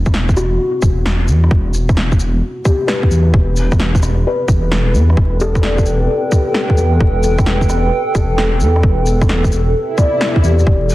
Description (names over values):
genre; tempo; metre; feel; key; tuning
future garage; 131 BPM; 4/4; swing 66% on 16ths; unclear; A4 = 439 Hz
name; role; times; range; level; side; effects
felt-muted upright piano; accompaniment; 0.0-10.9 s; F#4 to D5; -21 LUFS; left 2 dB; sidechain pumping, tape echo
dark detuned saw bass; bass; 0.0-10.9 s; E1 to E2; -14 LUFS; equal; sidechain pumping
electronic kick drum; drums; 0.1-10.8 s; none; -14 LUFS; equal; none
electronic rim click, shaker and snare drum; drums; 0.1-10.9 s; none; -22 LUFS; equal; none
warbly tape-like pad; sustained chords; 3.6-10.9 s; E3 to G5; -20 LUFS; right 1 dB; chorus, built-in reverb, sidechain pumping
swell; sound effects; 9.9-10.7 s; none; -25 LUFS; right 2 dB; none
room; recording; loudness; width
digital ambience; dense, heavily limited modern master, vinyl crackle, lossy compression artefacts; -12 LUFS; side -17 dB against mid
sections
0.0-10.9 A section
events
swell 9.9-10.7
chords
0.0 Em7; 3.3 G6/E